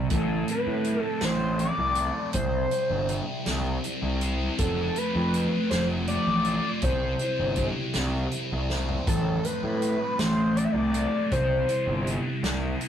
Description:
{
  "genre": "psychedelic rock",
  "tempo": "54 BPM (dotted quarters)",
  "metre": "6/8",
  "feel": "straight",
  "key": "unclear",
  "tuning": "A4 = 439 Hz",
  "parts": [
    { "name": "thick fuzz guitar", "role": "riff", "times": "0.0-12.9 s", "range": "F2 to C5", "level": "-28 LUFS", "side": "right 1 dB", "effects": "distortion, phaser" },
    { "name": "fuzz picked electric bass", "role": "bass", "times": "0.0-12.7 s", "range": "F1 to A2", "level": "-29 LUFS", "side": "equal", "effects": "overdrive" },
    { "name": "overdriven synth lead", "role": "melody", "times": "0.1-12.2 s", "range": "A4 to E5", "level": "-28 LUFS", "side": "left 1 dB", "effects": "chorus" },
    { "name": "vintage drum kit", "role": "drums", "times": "0.1-12.9 s", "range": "hi-hat, kick drum, snare drum, toms", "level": "-32 LUFS", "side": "equal", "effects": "none" }
  ],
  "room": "moderate small room reverb, RT60 0.6 s",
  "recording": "rough rehearsal-room recording, warm saturation",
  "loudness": "-24 LUFS",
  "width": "side -9 dB against mid",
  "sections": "0.1-12.9 A section",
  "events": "drum fill 8.7-9.1",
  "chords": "0.1 Am; 2.3 C; 4.6 F; 6.8 C; 9.1 Am; 11.3 C",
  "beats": "| 0.10 1.22 | 2.34 3.46 | 4.58 5.70 | 6.82 7.95 | 9.07 10.19 | 11.31 12.44"
}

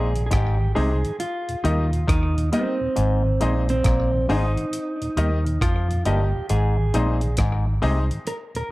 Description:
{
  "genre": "roots reggae",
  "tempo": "68 BPM",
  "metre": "4/4",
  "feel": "swing 65% on 16ths",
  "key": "unclear",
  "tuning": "A4 = 441 Hz",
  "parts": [
    { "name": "mellow electric guitar", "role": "accompaniment", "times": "0.0-8.7 s", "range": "C4 to Bb4", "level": "-27 LUFS", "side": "right 2 dB", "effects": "tape echo" },
    { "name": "overdriven clav", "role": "riff", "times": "0.0-8.0 s", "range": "G2 to F3", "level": "-31 LUFS", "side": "left 3 dB", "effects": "none" },
    { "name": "warm upright piano", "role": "stabs", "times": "0.0-8.0 s", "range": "Eb4 to Eb5", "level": "-29 LUFS", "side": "left 2 dB", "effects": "tube saturation" },
    { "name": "vintage muted fingered electric bass", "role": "bass", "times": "0.0-8.1 s", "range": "G1 to F2", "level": "-21 LUFS", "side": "equal", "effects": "none" },
    { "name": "mellow tonewheel organ", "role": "accompaniment", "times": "0.2-8.6 s", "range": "Eb2 to Eb4", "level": "-30 LUFS", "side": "left 1 dB", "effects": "slow rotary speaker, tube saturation, slapback echo" },
    { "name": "breakbeat sampler-style drum kit", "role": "drums", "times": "0.2-8.7 s", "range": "hi-hat, kick drum, rim click", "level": "-25 LUFS", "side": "equal", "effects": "none" }
  ],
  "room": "light reverb",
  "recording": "dark, warm production",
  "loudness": "-20 LUFS",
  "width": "side -19 dB against mid",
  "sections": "0.0-8.7 A section",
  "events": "clean electric guitar solo 0.0-8.7",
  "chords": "0.0 Ab; 1.2 Eb; 3.0 Ab; 4.7 Eb; 6.5 Ab",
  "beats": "0.31 1.20 2.08 | 2.96 3.85 4.73 5.62 | 6.50 7.38 8.27"
}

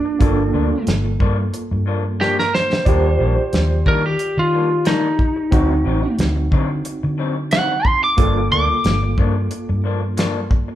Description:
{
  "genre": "straight-eighth soul blues",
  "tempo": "90 BPM",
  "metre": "4/4",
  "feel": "swing 54% on 16ths",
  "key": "G minor",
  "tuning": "A4 = 441 Hz",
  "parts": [
    { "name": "lightly driven lead guitar", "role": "melody", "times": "0.0-9.8 s", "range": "D4 to D6", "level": "-19 LUFS", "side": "right 1 dB", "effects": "none" },
    { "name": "overdriven tine electric piano", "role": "accompaniment", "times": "0.0-10.8 s", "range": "Bb3 to D5", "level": "-25 LUFS", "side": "right 3 dB", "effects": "fast tremolo" },
    { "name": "vintage muted fingered electric bass", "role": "bass", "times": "0.0-10.7 s", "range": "G1 to Eb3", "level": "-20 LUFS", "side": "equal", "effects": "none" },
    { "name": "electric guitar through a small old amp", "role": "stabs", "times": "0.1-10.7 s", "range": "G2 to Eb4", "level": "-27 LUFS", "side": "left 6 dB", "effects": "none" },
    { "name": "warm soul drum kit", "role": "drums", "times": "0.2-10.7 s", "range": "hi-hat, kick drum, snare drum", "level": "-19 LUFS", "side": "equal", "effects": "none" }
  ],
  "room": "moderate large studio reverb, RT60 0.9 s",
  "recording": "band playing live in one room",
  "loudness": "-15 LUFS",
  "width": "side -12 dB against mid",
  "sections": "0.0-10.8 A section",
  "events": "drum fill 2.2-2.9",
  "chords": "0.0 Gm7; 2.9 Ebmaj7; 5.5 D7b9; 8.2 Gm7",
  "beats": "| 0.21 0.87 1.54 2.20 | 2.87 3.53 4.20 4.86 | 5.53 6.19 6.86 7.52 | 8.19 8.85 9.52 10.18"
}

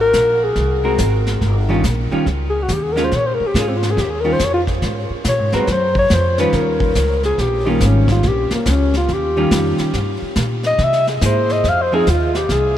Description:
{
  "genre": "jazz, small-group swing and bop",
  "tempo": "141 BPM",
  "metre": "4/4",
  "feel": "swing 65% on 8ths",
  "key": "Eb mixolydian",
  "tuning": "A4 = 442 Hz",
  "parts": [
    { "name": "dark alto saxophone", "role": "melody", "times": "0.0-12.8 s", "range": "Bb3 to F5", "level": "-18 LUFS", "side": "left 2 dB", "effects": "none" },
    { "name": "upright bass", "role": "bass", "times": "0.0-12.8 s", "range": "G1 to C3", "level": "-19 LUFS", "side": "equal", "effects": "none" },
    { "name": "vintage brush drum kit", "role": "drums", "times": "0.1-12.8 s", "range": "brushed snare drum, hi-hat, kick drum, snare drum", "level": "-25 LUFS", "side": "equal", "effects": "none" },
    { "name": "hollow-body jazz guitar", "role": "accompaniment", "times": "0.8-12.1 s", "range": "Eb3 to Bb4", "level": "-22 LUFS", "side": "right 2 dB", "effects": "none" }
  ],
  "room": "moderate huge ambient reverb, RT60 7.2 s",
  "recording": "in a vast, echoing space",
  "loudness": "-14 LUFS",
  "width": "side -11 dB against mid",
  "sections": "0.0-12.8 A section",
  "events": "alto saxophone solo 0.0-12.8",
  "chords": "0.0 Ab9; 1.4 Eb9; 3.1 Bbm7; 4.0 Eb9; 4.8 Ab9; 6.5 Eb9; 9.9 Gm; 10.8 Caug7; 11.6 Fm7",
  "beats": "0.14 0.56 0.99 | 1.41 1.84 2.27 2.69 | 3.12 3.55 3.97 4.40 | 4.83 5.25 5.68 6.11 | 6.53 6.96 7.38 7.81 | 8.23 8.66 9.09 9.51 | 9.94 10.36 10.79 11.21 | 11.64 12.06 12.49"
}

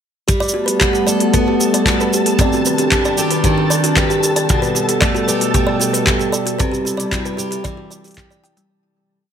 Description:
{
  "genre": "folktronica",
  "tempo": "114 BPM",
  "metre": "4/4",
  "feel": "straight",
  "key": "G major",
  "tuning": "A4 = 440 Hz",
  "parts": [
    { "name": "kalimba", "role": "second line", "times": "0.3-8.7 s", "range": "G3 to G5", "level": "-20 LUFS", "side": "right 1 dB", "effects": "digital delay" },
    { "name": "warbly tape-like pad", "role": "sustained chords", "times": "0.3-8.7 s", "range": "B2 to A4", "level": "-21 LUFS", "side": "equal", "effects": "chorus, built-in reverb" },
    { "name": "picked steel-string acoustic guitar", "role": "arpeggios", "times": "0.3-9.3 s", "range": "B2 to A4", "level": "-20 LUFS", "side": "equal", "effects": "digital delay" },
    { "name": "kick drum", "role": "drums", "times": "0.3-8.3 s", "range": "none", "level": "-19 LUFS", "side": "equal", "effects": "none" },
    { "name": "organic electronic drum kit", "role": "drums", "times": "0.3-8.7 s", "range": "handclaps, hi-hat, shaker", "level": "-20 LUFS", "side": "right 1 dB", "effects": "none" },
    { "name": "flickering grainy texture", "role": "texture", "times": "0.6-8.7 s", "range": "A4 to A5", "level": "-25 LUFS", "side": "equal", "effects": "built-in reverb" }
  ],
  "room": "light reverb, studio reverb",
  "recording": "none",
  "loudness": "-14 LUFS",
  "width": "side -8 dB against mid",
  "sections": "0.3-8.7 groove",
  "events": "fade-out 5.9-8.7",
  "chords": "0.3 Gadd9; 2.4 Cmadd9; 4.5 Gadd9/B; 6.6 C",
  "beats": "| 0.28 0.81 1.33 1.86 | 2.39 2.91 3.44 3.97 | 4.49 5.02 5.55 6.07 | 6.60 7.12 7.65 8.18"
}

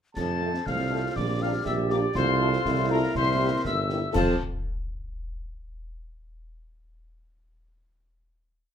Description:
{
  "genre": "military-style march for wind band",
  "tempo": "121 BPM",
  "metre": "2/4",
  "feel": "straight",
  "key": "F major",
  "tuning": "A4 = 439 Hz",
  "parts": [
    { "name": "mellow trumpet section", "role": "melody", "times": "0.1-4.4 s", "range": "Bb4 to A5", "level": "-31 LUFS", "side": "left 4 dB", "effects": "none" },
    { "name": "hollow piccolo", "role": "second line", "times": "0.2-4.4 s", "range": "A5 to A6", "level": "-32 LUFS", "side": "left 6 dB", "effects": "none" },
    { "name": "warm woodwind section", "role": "second line", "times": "0.2-4.4 s", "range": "G4 to F5", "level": "-34 LUFS", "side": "left 1 dB", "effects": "none" },
    { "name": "clear tuba", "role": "bass", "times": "0.2-4.4 s", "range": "G1 to F2", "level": "-27 LUFS", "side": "right 4 dB", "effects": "none" },
    { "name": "concert snare drum, clash cymbals and concert bass drum", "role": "drums", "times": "0.2-4.4 s", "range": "none", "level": "-34 LUFS", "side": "left 1 dB", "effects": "none" },
    { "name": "warm French horn section", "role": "accompaniment", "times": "0.4-4.3 s", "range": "A3 to A4", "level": "-31 LUFS", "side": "left 4 dB", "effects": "none" },
    { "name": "clear euphonium", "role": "second line", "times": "0.7-3.8 s", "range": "E4 to G4", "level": "-32 LUFS", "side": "right 4 dB", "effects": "none" }
  ],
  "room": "moderate large studio reverb, RT60 0.8 s",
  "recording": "close, detailed microphones",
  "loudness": "-23 LUFS",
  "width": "side -8 dB against mid",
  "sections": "0.2-4.2 A section; 4.2-5.1 final chord",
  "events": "none",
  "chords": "0.2 F; 1.2 Gm/Bb; 2.2 F/C; 3.2 C7; 4.2 F",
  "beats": "| 0.17 0.67 | 1.17 1.66 | 2.16 2.66 | 3.16 3.65 | 4.15"
}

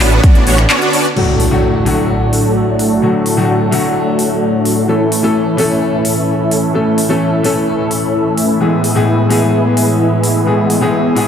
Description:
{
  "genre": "EDM, festival progressive house",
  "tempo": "129 BPM",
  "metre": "4/4",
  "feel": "straight",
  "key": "unclear",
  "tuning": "A4 = 440 Hz",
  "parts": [
    { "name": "lush unison pad", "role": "sustained chords", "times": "0.0-11.3 s", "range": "A2 to E5", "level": "-19 LUFS", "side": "equal", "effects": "chorus, phaser, sidechain pumping" },
    { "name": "supersaw chords", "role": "riff", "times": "0.0-11.3 s", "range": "A2 to D5", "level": "-14 LUFS", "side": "equal", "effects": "ensemble chorus, sidechain pumping, low-pass filter, tape echo" },
    { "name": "detuned saw bass", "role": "bass", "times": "0.0-0.7 s", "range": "A1", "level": "-13 LUFS", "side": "equal", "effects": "sidechain pumping" },
    { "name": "big-room dance drum kit", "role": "drums", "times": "0.0-11.3 s", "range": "crash cymbal, finger snaps, handclaps, hi-hat", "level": "-20 LUFS", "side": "equal", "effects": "none" },
    { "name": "clear concert grand piano", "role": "accompaniment", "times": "1.2-11.3 s", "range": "A2 to A4", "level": "-17 LUFS", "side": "left 3 dB", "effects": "sidechain pumping, tape echo" },
    { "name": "impact", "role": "sound effects", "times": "1.2-3.0 s", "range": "none", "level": "-19 LUFS", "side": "equal", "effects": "none" }
  ],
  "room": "moderate lush hall reverb, RT60 2.2 s",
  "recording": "none",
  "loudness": "-11 LUFS",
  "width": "side -8 dB against mid",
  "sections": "0.0-1.2 A section; 1.2-11.3 B section",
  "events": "drop 0.0-1.2; break 0.7-1.2; impact 1.2-3.0",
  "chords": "0.0 Bmadd9/A; 1.2 D/A; 4.9 A; 8.6 E/A",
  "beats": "0.24 0.70 | 1.17 1.63 2.10 2.56 | 3.03 3.49 3.96 4.42 | 4.89 5.35 5.82 6.28 | 6.75 7.21 7.68 8.14 | 8.61 9.07 9.54 10.00 | 10.47 10.93"
}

